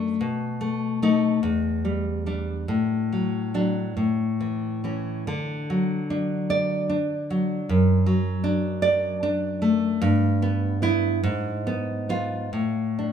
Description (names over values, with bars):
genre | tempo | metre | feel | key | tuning
romantic piece for solo classical guitar | 45-53 BPM (dotted quarters) | 6/8 | rubato | D major | A4 = 443 Hz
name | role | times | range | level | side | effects
nylon-string guitar | solo | 0.0-13.1 s | E2 to D5 | -22 LUFS | equal | none
room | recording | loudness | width
moderate recital hall reverb, RT60 1.8 s | minimal, uncompressed stereo recording | -22 LUFS | side -8 dB against mid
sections
0.0-5.3 A section; 5.3-13.1 A section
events
none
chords
0.2 B7; 1.4 Em7; 2.7 D/A; 4.0 A; 5.3 D; 7.7 D/F#; 10.0 Em/G; 11.2 G#m6; 12.5 D5/A